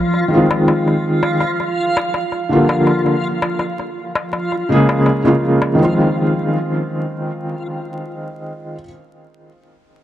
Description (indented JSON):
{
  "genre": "trip hop",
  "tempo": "82 BPM",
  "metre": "4/4",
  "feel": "straight",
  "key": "F minor",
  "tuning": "A4 = 438 Hz",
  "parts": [
    { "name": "backwards swelling texture", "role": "texture", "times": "0.0-5.8 s", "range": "F3 to F4", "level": "-21 LUFS", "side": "equal", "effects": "built-in reverb" },
    { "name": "darbuka", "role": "percussion", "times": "0.1-5.8 s", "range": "none", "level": "-24 LUFS", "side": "left 3 dB", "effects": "none" },
    { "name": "felt-muted upright piano", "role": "accompaniment", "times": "0.3-8.8 s", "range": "Db3 to Ab4", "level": "-16 LUFS", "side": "equal", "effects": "tremolo, tape echo" }
  ],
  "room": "light reverb, small room ambience",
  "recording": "dry, gritty hardware recording, transformer saturation, vinyl crackle",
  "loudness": "-14 LUFS",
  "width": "side -12 dB against mid",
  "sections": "0.0-5.8 A section; 5.8-8.7 B section",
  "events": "none",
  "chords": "0.0 Fm7; 1.4 Gm7; 4.3 Bbm7; 5.8 Fm7",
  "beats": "0.67 1.41 2.14 | 2.87 3.60 4.33 5.06 | 5.80 6.53 7.26 7.99"
}